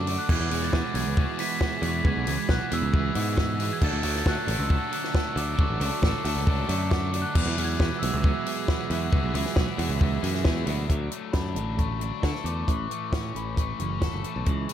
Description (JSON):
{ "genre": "indie rock", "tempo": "136 BPM", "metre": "4/4", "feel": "straight", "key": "E mixolydian", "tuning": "A4 = 440 Hz", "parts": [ { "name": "glockenspiel with rubber mallets", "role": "melody", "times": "0.0-14.2 s", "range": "B5 to B6", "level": "-33 LUFS", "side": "right 1 dB", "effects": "dub echo" }, { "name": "crunchy overdriven guitar", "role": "riff", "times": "0.0-14.7 s", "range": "E3 to A4", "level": "-34 LUFS", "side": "left 10 dB", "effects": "dub echo" }, { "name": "twelve-string electric guitar", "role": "riff", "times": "0.0-14.7 s", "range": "E2 to F#4", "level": "-33 LUFS", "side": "right 10 dB", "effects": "lush chorus, dub echo" }, { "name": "modern bright picked electric bass", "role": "bass", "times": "0.0-14.7 s", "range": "F#1 to D3", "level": "-28 LUFS", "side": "equal", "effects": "none" }, { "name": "compact cocktail drum kit", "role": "drums", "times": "0.1-14.7 s", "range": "crash cymbal, hi-hat, kick drum, snare drum", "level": "-26 LUFS", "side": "equal", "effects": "none" } ], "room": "light reverb, studio reverb", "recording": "echo-heavy mix", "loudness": "-23 LUFS", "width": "side -10 dB against mid", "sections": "0.0-10.9 A section; 10.9-14.7 B section", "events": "none", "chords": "0.3 Eadd9; 3.8 D; 7.4 Eadd9; 10.9 D; 12.7 A" }